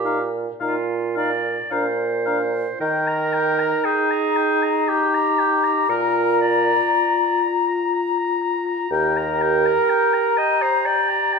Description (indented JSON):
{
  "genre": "classical, slow romantic movement for wind quintet",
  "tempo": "53-64 BPM",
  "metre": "3/4",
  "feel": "rubato",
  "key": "Eb major",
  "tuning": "A4 = 440 Hz",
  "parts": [
    { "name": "warm oboe", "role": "second line", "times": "0.0-11.4 s", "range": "F5 to Bb5", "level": "-25 LUFS", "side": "left 3 dB", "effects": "none" },
    { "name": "bright clarinet", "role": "accompaniment", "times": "0.0-11.4 s", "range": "F4 to Eb5", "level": "-22 LUFS", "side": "right 7 dB", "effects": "none" },
    { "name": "warm French horn", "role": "accompaniment", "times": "0.0-11.4 s", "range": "D4 to G4", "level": "-27 LUFS", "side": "left 3 dB", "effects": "none" },
    { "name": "mellow bassoon", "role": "bass", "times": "0.0-9.7 s", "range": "Eb2 to Eb3", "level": "-24 LUFS", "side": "right 3 dB", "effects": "none" },
    { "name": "mellow hollow concert flute", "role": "melody", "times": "0.1-11.4 s", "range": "Bb5", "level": "-23 LUFS", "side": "left 10 dB", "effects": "none" }
  ],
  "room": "moderate recital hall reverb, RT60 1.3 s",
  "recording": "minimal, uncompressed stereo recording",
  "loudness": "-18 LUFS",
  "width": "side -4 dB against mid",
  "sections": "0.0-2.8 A section; 2.8-11.4 B section",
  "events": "none",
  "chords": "0.0 Bbsus4; 1.7 Bb; 2.8 Eb; 5.9 Bb; 8.9 Eb"
}